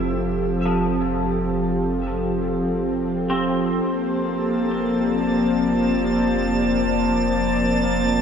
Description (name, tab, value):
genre	ambient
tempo	free time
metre	none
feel	none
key	F major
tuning	A4 = 444 Hz
part	airy breathy pad	sustained chords	0.0-8.2 s	F3 to D5	-21 LUFS	equal	chorus, shimmer reverb
part	semi-hollow electric guitar	arpeggios	0.0-6.4 s	F3 to E5	-31 LUFS	equal	ensemble chorus, tape echo, shimmer reverb
part	warm sub bass	bass	0.0-8.2 s	F1	-32 LUFS	equal	none
part	bowed-like drone	drone	0.0-8.2 s	F3 to C4	-28 LUFS	left 1 dB	built-in reverb
part	drifting glass-harmonics texture	texture	4.4-8.2 s	A5 to A6	-28 LUFS	right 3 dB	chorus, built-in reverb, shimmer reverb
room	wet lush hall reverb, RT60 2.8 s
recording	dreamy mix soaked in reverb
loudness	-19 LUFS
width	side -7 dB against mid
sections	0.0-8.2 A section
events	none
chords	0.0 Fmaj7; 3.9 Bb6/F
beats	free time